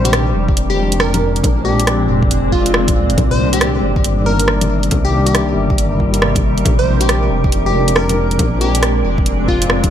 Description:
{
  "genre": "future garage",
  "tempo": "138 BPM",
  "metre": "4/4",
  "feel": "swing 63% on 16ths",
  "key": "unclear",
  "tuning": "A4 = 440 Hz",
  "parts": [
    { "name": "glassy wavetable pluck", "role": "melody", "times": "0.0-9.8 s", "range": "F4 to C5", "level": "-20 LUFS", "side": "left 2 dB", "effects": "chorus, tape echo" },
    { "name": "bell-like tine electric piano", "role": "accompaniment", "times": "0.0-9.9 s", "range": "Eb3 to G4", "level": "-22 LUFS", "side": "left 2 dB", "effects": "sidechain pumping, ping-pong delay" },
    { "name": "granular cloud pad", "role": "sustained chords", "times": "0.0-9.9 s", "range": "Bb2 to Bb4", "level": "-20 LUFS", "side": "right 1 dB", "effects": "built-in reverb, vintage 12-bit sampler grit, sidechain pumping" },
    { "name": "dark detuned saw bass", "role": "bass", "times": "0.0-9.9 s", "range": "F1 to D2", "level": "-18 LUFS", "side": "equal", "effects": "sidechain pumping" },
    { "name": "wind-like tuned noise texture", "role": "texture", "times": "0.0-9.9 s", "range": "D5", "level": "-27 LUFS", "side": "left 1 dB", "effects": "built-in reverb" },
    { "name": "garage drum kit", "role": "drums", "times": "0.1-9.9 s", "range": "bongos, hi-hat, rim click", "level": "-19 LUFS", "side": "equal", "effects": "overdrive, studio ambience" },
    { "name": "electronic kick drum", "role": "drums", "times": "0.5-9.9 s", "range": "none", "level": "-17 LUFS", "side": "equal", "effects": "studio ambience" }
  ],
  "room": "light reverb",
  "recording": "none",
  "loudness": "-12 LUFS",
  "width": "side -10 dB against mid",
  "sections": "0.0-9.9 A section",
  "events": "none",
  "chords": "0.0 Bb7; 3.2 Cm7; 6.7 Bb7"
}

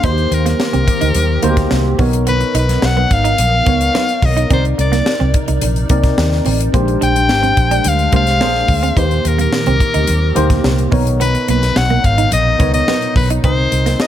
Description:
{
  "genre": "polished 1980s jazz-funk pop",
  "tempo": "108 BPM",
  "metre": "4/4",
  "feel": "straight",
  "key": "Eb major",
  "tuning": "A4 = 441 Hz",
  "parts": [
    { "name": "edgy soprano saxophone", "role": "melody", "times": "0.0-14.1 s", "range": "Bb4 to G5", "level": "-17 LUFS", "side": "left 2 dB", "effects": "none" },
    { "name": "tine electric piano", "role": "accompaniment", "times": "0.0-14.1 s", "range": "Ab3 to Eb5", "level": "-20 LUFS", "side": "left 1 dB", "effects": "overdrive, lush chorus" },
    { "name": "hollow soft pad", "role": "sustained chords", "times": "0.0-14.1 s", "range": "Bb2 to D5", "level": "-26 LUFS", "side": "right 1 dB", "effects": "ensemble chorus" },
    { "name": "semi-hollow electric guitar", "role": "riff", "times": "0.0-14.0 s", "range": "Bb3 to Eb4", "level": "-23 LUFS", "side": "right 9 dB", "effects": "wide subtle chorus" },
    { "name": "vintage muted fingered electric bass", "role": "bass", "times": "0.0-13.9 s", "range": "Ab1 to Eb2", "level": "-16 LUFS", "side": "equal", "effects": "none" },
    { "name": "tight funk drum kit", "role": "drums", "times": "0.0-14.1 s", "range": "hi-hat, kick drum, snare drum", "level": "-18 LUFS", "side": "equal", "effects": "none" },
    { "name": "congas", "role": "percussion", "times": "0.0-14.1 s", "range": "none", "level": "-29 LUFS", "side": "right 2 dB", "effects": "none" }
  ],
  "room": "small room ambience",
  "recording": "none",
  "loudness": "-12 LUFS",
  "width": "side -11 dB against mid",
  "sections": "0.0-14.1 A section",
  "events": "none",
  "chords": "0.0 Eb6; 2.0 Bmaj9; 4.5 Cm9; 6.7 Bb13; 8.4 Bb9; 9.0 Eb6; 10.9 Bmaj9; 13.4 Cm7"
}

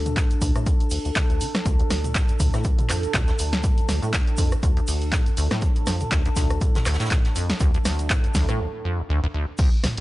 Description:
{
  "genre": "acid house",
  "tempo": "121 BPM",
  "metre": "4/4",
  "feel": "swing 56% on 16ths",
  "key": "D minor",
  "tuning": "A4 = 444 Hz",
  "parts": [
    { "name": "liquid acid bass", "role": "riff", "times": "0.0-10.0 s", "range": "D2 to D3", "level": "-25 LUFS", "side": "equal", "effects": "wide subtle chorus, sidechain pumping" },
    { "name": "warbly tape-like pad", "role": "texture", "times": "0.0-8.6 s", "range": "D4 to A5", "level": "-32 LUFS", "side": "right 1 dB", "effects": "chorus, built-in reverb, phaser, sidechain pumping" },
    { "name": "punchy analog drum machine", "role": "drums", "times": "0.1-10.0 s", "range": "crash cymbal, handclaps, hi-hat, rim click, snare drum, toms", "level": "-27 LUFS", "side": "equal", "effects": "none" },
    { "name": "tube shaker", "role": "percussion", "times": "0.1-8.6 s", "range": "none", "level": "-38 LUFS", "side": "right 2 dB", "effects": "none" },
    { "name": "electronic kick drum", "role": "drums", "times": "0.2-9.7 s", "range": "none", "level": "-21 LUFS", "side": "equal", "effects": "none" },
    { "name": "vintage brush drum kit", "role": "drums", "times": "0.2-10.0 s", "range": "hi-hat, shaker, snare drum", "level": "-38 LUFS", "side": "right 1 dB", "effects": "none" }
  ],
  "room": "small room ambience",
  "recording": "nothing above 11.0 kHz",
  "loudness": "-20 LUFS",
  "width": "side -17 dB against mid",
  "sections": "0.0-9.6 A section",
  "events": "filter sweep on acid bass 0.0-9.6; break 8.6-9.6",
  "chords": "0.0 D5"
}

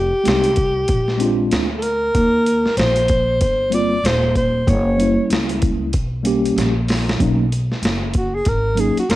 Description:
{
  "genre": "hip hop, jazz-hop",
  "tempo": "95 BPM",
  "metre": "4/4",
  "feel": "swing 60% on 16ths",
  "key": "unclear",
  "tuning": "A4 = 438 Hz",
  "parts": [
    { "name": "breathy alto saxophone", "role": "melody", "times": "0.0-9.2 s", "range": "F#4 to D5", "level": "-19 LUFS", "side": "equal", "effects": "cassette tape" },
    { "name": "upright bass", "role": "bass", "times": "0.0-9.2 s", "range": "D#1 to D#2", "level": "-20 LUFS", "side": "equal", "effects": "tube saturation" },
    { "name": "mellow tine electric piano", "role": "accompaniment", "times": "0.2-9.0 s", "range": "F#3 to G4", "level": "-19 LUFS", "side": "equal", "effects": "medium stereo tremolo, cassette tape" },
    { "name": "boom bap sampler-style drum kit", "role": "drums", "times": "0.3-9.2 s", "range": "hi-hat, kick drum, snare drum", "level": "-21 LUFS", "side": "equal", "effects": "none" }
  ],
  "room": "light reverb",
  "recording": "home recording on cassette",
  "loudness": "-15 LUFS",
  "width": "side -16 dB against mid",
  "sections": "0.0-7.2 A section; 7.2-9.2 B section",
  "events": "drum fill 6.6-7.2; alto saxophone solo 7.2-9.2",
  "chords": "0.0 Fm9 (rootless); 0.9 A#9; 2.1 D#6; 4.7 F#7b9; 7.2 Bmaj9"
}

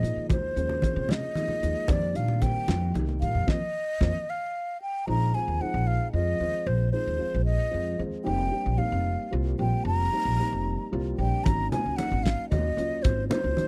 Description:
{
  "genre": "electric jazz fusion",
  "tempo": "75 BPM (dotted quarters)",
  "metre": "6/8",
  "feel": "straight",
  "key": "F minor, Bb minor from 5.1 s",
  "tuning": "A4 = 441 Hz",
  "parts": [
    { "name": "mellow hollow concert flute", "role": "melody", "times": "0.0-13.7 s", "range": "C5 to Bb5", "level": "-32 LUFS", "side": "equal", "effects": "none" },
    { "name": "dark concert grand piano", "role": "accompaniment", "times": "0.0-13.7 s", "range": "Eb3 to Gb4", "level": "-36 LUFS", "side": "equal", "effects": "none" },
    { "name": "upright bass", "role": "bass", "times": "0.0-13.6 s", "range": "F1 to C3", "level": "-30 LUFS", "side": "equal", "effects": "none" },
    { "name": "damped 70s drum kit", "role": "drums", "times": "0.0-4.1, 11.5-13.7 s", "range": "hi-hat, kick drum, snare drum", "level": "-28 LUFS", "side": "equal", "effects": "none" },
    { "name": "congas", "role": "percussion", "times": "0.3-4.1, 11.5-13.7 s", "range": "none", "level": "-34 LUFS", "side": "equal", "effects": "none" }
  ],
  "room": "little or no reverb",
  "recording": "dry, close 1970s-style studio recording",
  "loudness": "-27 LUFS",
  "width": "mono",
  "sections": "0.0-5.1 A section; 5.1-13.7 B section",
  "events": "band accent 3.5-5.1",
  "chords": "0.0 Eb9sus4; 1.9 F9sus4; 5.1 Bb9sus4; 8.3 F9sus4; 11.5 Ab9sus4"
}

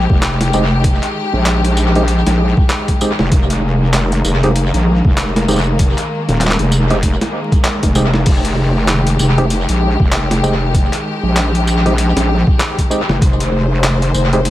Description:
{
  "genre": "glitch hop",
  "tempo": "97 BPM",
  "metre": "4/4",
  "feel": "swing 60% on 16ths",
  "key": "F minor",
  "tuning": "A4 = 440 Hz",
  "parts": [
    { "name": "rich studio string section", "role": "sustained chords", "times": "0.0-14.5 s", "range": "Eb3 to C5", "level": "-20 LUFS", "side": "left 2 dB", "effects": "sidechain pumping" },
    { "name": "wobble bass", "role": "bass", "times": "0.0-14.5 s", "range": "Eb1 to Bb1", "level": "-14 LUFS", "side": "equal", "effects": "chorus, tube saturation" },
    { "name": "electronic kick drum", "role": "drums", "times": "0.1-13.4 s", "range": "none", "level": "-14 LUFS", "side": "equal", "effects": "overdrive" },
    { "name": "boom bap sampler-style drum kit", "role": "drums", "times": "0.2-14.5 s", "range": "crash cymbal, handclaps, hi-hat, snare drum, tambourine", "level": "-20 LUFS", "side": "equal", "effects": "overdrive, dub echo" },
    { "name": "auto-wah clav", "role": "stabs", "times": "0.5-14.4 s", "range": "Ab3 to G4", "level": "-22 LUFS", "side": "right 1 dB", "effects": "overdrive, sidechain pumping, dub echo" }
  ],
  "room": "little or no reverb",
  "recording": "echo-heavy mix, vinyl crackle",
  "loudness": "-12 LUFS",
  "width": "side -14 dB against mid",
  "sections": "0.0-14.5 A section",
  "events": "none",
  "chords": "0.0 Fm9"
}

